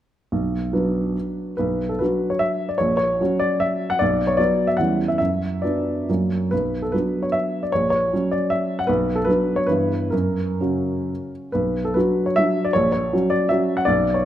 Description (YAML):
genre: classical, romantic triple-time dance for piano with dotted rhythms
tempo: 118-168 BPM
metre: 3/4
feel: rubato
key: B minor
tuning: A4 = 440 Hz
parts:
  - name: warm baby grand piano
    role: solo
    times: 0.3-14.2 s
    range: A#1 to F#5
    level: -19 LUFS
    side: equal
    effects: none
room: moderate recital hall reverb, RT60 1.7 s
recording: close, detailed microphones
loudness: -19 LUFS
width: side -11 dB against mid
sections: 0.3-1.6 A section; 1.6-11.5 B section; 11.5-14.2 B section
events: none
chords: 0.3 Bm; 2.8 F#/A#; 4.0 B5; 4.8 C#dim/E; 5.2 Bm/F#; 6.1 F#; 6.5 Bm; 7.7 F#/A#; 8.9 Bm; 9.7 Em/G; 10.1 F#; 11.5 Bm; 12.7 F#/A#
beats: | 0.33 0.73 1.15 | 1.59 2.01 2.42 | 2.79 3.20 3.62 | 4.01 4.38 4.79 | 5.20 5.63 6.08 | 6.52 6.94 7.35 | 7.74 8.13 8.53 | 8.89 9.28 9.70 | 10.13 10.61 11.10 | 11.54 11.96 12.37 | 12.74 13.13 13.50 | 13.87